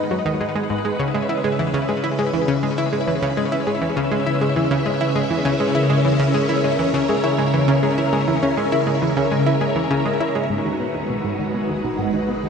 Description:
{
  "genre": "ambient, sequencer-driven space music",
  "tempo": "101 BPM",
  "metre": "4/4",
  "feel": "straight",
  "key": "unclear",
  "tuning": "A4 = 441 Hz",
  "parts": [
    { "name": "string machine, full ensemble", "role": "sustained chords", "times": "0.0-12.5 s", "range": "C#3 to F#5", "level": "-20 LUFS", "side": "equal", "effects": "phaser, ensemble chorus" },
    { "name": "analog pluck", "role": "riff", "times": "0.1-12.5 s", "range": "G#2 to E4", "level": "-21 LUFS", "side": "equal", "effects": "chorus, ping-pong delay" },
    { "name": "round analog bass", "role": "bass", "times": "10.5-12.5 s", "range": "G#1", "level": "-44 LUFS", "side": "equal", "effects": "none" }
  ],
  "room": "wet shimmer reverb, RT60 9.1 s",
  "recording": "nothing above 10.4 kHz",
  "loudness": "-18 LUFS",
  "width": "side -6 dB against mid",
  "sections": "0.0-10.5 A section; 10.5-12.5 B section",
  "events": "filter sweep on synth arpeggio sound 10.5-12.5",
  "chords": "0.0 G#m7; 1.0 C#m7; 10.5 G#m7",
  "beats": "0.40 | 1.00 1.59 2.18 2.78 | 3.37 3.97 4.56 5.15 | 5.75 6.34 6.94 7.53 | 8.12 8.72 9.31 9.91 | 10.50 11.10 11.69 12.28"
}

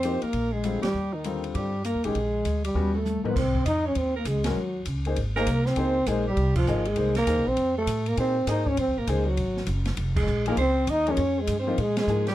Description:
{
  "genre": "jazz, small-group swing and bop",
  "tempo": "200 BPM",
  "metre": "4/4",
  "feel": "swing 63% on 8ths",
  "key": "Eb major, Ab major from 3.4 s",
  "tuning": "A4 = 439 Hz",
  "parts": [
    { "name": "breathy trombone", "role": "melody", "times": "0.0-12.3 s", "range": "Eb3 to Eb4", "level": "-26 LUFS", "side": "equal", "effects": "none" },
    { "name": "growling alto saxophone", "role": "second line", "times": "0.0-12.3 s", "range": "Eb4 to Eb5", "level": "-33 LUFS", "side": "right 6 dB", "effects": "none" },
    { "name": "warm concert grand piano", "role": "accompaniment", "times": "0.0-12.3 s", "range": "Ab2 to Eb5", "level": "-31 LUFS", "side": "left 4 dB", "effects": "none" },
    { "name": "upright bass", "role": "bass", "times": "0.0-12.3 s", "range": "F1 to Bb2", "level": "-28 LUFS", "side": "equal", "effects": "none" },
    { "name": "open jazz drum kit", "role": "drums", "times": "0.0-12.3 s", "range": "crash cymbal, hi-hat, kick drum, ride cymbal, snare drum, toms", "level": "-34 LUFS", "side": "equal", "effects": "none" }
  ],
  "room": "light reverb",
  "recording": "dark, warm production",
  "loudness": "-23 LUFS",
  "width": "side -14 dB against mid",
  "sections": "0.0-3.4 A section; 3.4-12.3 B section",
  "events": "band accent 0.8, 4.4, 6.5, 10.1, 11.9; drum fill 2.8-3.4",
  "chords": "0.3 Bb7; 0.9 Ebmaj7; 2.2 Bb7; 2.8 Eb7alt; 3.4 Ab; 4.6 Ebm7; 5.2 Abadd9; 5.8 Dbmaj7; 7.0 Bb9sus4; 7.6 F; 8.2 Bbm9; 9.4 Absus2; 10.6 Dbmaj9#11; 11.8 Bb5",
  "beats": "0.04 0.34 0.64 | 0.94 1.25 1.55 1.85 | 2.15 2.46 2.76 3.06 | 3.36 3.66 3.96 4.26 | 4.57 4.87 5.17 5.47 | 5.77 6.07 6.37 6.67 | 6.97 7.27 7.57 7.87 | 8.17 8.47 8.77 9.07 | 9.37 9.67 9.97 10.28 | 10.57 10.88 11.18 11.48 | 11.78 12.08"
}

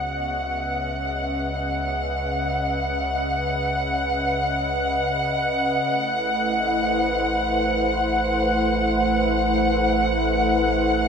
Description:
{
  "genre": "ambient",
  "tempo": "free time",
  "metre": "none",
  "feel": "none",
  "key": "C# minor",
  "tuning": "A4 = 438 Hz",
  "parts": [
    { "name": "warm analog pad", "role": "sustained chords", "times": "0.0-11.1 s", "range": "C#3 to F#5", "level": "-24 LUFS", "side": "equal", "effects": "chorus" },
    { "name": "concert harp", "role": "arpeggios", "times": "0.0-0.7 s", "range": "F#4", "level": "-48 LUFS", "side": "left 2 dB", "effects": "none" },
    { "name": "warm sub bass", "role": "bass", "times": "0.0-11.1 s", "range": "A1 to C#2", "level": "-31 LUFS", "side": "equal", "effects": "none" },
    { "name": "muted chamber violin section", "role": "texture", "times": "0.0-11.1 s", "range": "F#5", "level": "-23 LUFS", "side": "equal", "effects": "none" }
  ],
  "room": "wet huge ambient reverb, RT60 8.3 s",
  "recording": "dark, warm production",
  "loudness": "-20 LUFS",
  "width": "side -6 dB against mid",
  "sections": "0.0-11.1 A section",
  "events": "fade-in on analog synth pad 0.0-11.1; fade-in on sub bass 0.0-11.1",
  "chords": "0.0 C#m7; 5.9 Am6",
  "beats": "free time"
}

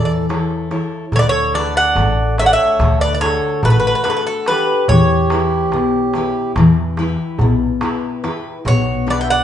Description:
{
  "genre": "greek folk, Greek bouzouki band",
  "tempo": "144 BPM (eighths)",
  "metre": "9/8",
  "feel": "straight",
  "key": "D major",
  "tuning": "A4 = 440 Hz",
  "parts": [
    { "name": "Greek bouzouki", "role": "melody", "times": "0.0-9.4 s", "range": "A4 to G5", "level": "-17 LUFS", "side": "right 1 dB", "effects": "none" },
    { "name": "mellow accordion", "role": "second line", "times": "0.0-9.4 s", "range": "F#4 to E5", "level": "-22 LUFS", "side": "right 3 dB", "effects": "none" },
    { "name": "picked steel-string acoustic guitar", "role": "accompaniment", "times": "0.0-9.4 s", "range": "B2 to F#5", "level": "-19 LUFS", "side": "left 4 dB", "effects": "none" },
    { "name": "upright bass", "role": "bass", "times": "0.0-9.4 s", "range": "A1 to E2", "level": "-21 LUFS", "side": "equal", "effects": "none" },
    { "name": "darbuka", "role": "percussion", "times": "0.1-9.4 s", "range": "none", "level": "-20 LUFS", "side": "equal", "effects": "none" }
  ],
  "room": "wet large studio reverb, RT60 1.0 s",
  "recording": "band playing live in one room, nothing above 10.5 kHz",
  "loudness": "-14 LUFS",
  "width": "side -10 dB against mid",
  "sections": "0.0-1.1 A section; 1.1-9.4 B section",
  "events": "none",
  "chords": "0.0 A; 1.1 D; 4.9 Em; 8.7 Bm",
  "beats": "0.29 0.71 | 1.13 1.54 1.96 2.38 2.80 3.22 3.63 4.05 4.47 | 4.89 5.31 5.72 6.14 6.56 6.98 7.40 7.82 8.24 | 8.65 9.07"
}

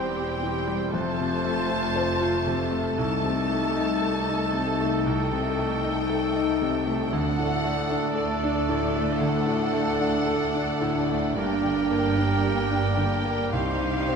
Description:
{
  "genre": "classical, romantic movement for piano and orchestra",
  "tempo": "53-60 BPM",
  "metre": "4/4",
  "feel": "rubato",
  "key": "unclear",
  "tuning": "A4 = 440 Hz",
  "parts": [
    { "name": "clear grand piano", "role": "melody", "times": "0.0-14.2 s", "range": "C2 to C5", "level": "-28 LUFS", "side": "left 1 dB", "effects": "none" },
    { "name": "warm studio violin section", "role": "melody", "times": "0.0-14.2 s", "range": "D5 to A5", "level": "-32 LUFS", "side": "left 2 dB", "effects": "none" },
    { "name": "mellow clarinet", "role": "second line", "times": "0.0-14.2 s", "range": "D4 to G4", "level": "-35 LUFS", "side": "left 3 dB", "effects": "none" },
    { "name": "warm oboe", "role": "second line", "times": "0.0-14.2 s", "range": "A4 to C5", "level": "-34 LUFS", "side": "right 1 dB", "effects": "none" },
    { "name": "warm symphonic violin section", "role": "second line", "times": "0.0-14.2 s", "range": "G4 to D5", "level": "-35 LUFS", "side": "left 1 dB", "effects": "none" },
    { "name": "clear bassoon", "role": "accompaniment", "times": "0.0-14.2 s", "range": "G3 to A3", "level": "-35 LUFS", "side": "right 4 dB", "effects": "none" },
    { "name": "rich studio viola section", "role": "accompaniment", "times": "0.0-14.2 s", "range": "G3 to G4", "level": "-34 LUFS", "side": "equal", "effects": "none" },
    { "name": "mellow French horn section", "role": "sustained chords", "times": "0.0-14.2 s", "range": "G3 to Eb4", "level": "-33 LUFS", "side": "left 5 dB", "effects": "none" },
    { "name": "clear studio cello section", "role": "bass", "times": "0.0-14.2 s", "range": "C2 to C3", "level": "-34 LUFS", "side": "right 3 dB", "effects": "none" },
    { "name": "rich studio double bass section", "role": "bass", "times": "0.0-14.2 s", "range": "E1 to D2", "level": "-33 LUFS", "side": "right 3 dB", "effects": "none" }
  ],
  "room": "wet scoring stage reverb, RT60 2.2 s",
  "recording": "minimal, uncompressed stereo recording",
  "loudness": "-22 LUFS",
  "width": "side -6 dB against mid",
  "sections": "0.0-14.2 A section",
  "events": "none",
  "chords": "0.0 C/E; 0.9 F; 3.0 Adim/C; 7.1 D; 11.4 Gm; 13.5 Cm",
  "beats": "0.93 1.96 | 2.97 4.02 5.06 6.09 | 7.12 8.14 9.21 10.27 | 11.37 12.44 13.52"
}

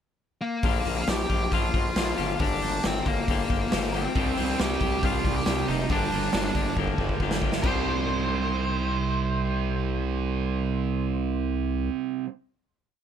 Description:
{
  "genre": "quiet-loud alternative rock",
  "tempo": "137 BPM",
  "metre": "4/4",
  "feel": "straight",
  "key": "C minor",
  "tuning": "A4 = 439 Hz",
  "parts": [
    { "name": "octave-fuzz lead guitar", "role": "melody", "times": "0.4-11.9 s", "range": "Bb3 to G5", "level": "-30 LUFS", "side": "left 1 dB", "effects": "distortion" },
    { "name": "clean electric guitar", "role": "arpeggios", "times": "0.6-12.3 s", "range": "G2 to G4", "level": "-33 LUFS", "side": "left 12 dB", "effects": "none" },
    { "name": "growling FM bass", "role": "bass", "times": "0.6-11.9 s", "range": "F1 to C2", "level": "-30 LUFS", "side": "left 1 dB", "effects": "none" },
    { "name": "raw garage drum kit", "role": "drums", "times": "0.6-7.7 s", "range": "crash cymbal, hi-hat, kick drum, snare drum", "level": "-28 LUFS", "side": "left 1 dB", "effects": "none" },
    { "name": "distorted electric guitar", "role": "riff", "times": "4.2-12.3 s", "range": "G2 to C4", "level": "-29 LUFS", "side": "right 11 dB", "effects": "distortion" }
  ],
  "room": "little or no reverb",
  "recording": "none",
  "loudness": "-24 LUFS",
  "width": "side -8 dB against mid",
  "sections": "0.0-0.6 pickup bar; 0.6-7.6 pre-chorus; 7.6-11.1 final chord",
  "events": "drum fill 6.8-7.6",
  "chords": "0.0 N.C.; 0.6 Bb; 2.2 Gm; 4.2 Cmadd9; 5.9 Gm7; 7.6 Cmadd9",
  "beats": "0.20 | 0.65 1.09 1.53 1.97 | 2.41 2.85 3.29 3.73 | 4.16 4.60 5.04 5.47 | 5.91 6.34 6.78 7.21 | 7.65 8.08 8.52 8.95 | 9.39 9.83 10.27 10.70"
}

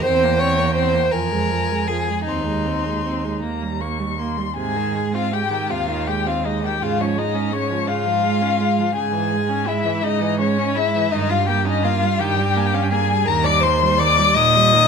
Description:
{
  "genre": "classical, slow romantic movement for string quartet",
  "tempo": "51-58 BPM (dotted quarters)",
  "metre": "6/8",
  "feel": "rubato",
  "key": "Ab major",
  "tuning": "A4 = 440 Hz",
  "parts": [
    { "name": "rich violin", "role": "melody", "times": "0.0-14.9 s", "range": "Db5 to Eb6", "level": "-21 LUFS", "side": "left 9 dB", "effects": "none" },
    { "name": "rich violin", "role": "second line", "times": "0.0-14.9 s", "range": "Db4 to Eb5", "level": "-23 LUFS", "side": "left 2 dB", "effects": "none" },
    { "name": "clear viola", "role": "accompaniment", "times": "0.0-14.9 s", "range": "C3 to Db4", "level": "-26 LUFS", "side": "right 5 dB", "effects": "none" },
    { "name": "rich cello", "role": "bass", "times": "0.1-14.9 s", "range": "Eb2 to Bb2", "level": "-23 LUFS", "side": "right 6 dB", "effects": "none" }
  ],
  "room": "moderate recital hall reverb, RT60 1.7 s",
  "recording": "close, detailed microphones",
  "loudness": "-17 LUFS",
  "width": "side -6 dB against mid",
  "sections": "0.0-4.6 A section; 4.6-14.9 B section",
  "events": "none",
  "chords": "0.1 C7/E; 1.1 Fm; 2.3 Ab/Eb; 3.4 Eb; 4.6 Ab; 6.8 Db/Ab; 9.0 Dbm/Ab; 11.1 Eb7/G; 13.3 Eb",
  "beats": "| 0.06 1.12 | 2.27 3.43 | 4.58 5.70 | 6.81 7.88 | 8.95 10.03 | 11.12 12.20 | 13.27 14.36"
}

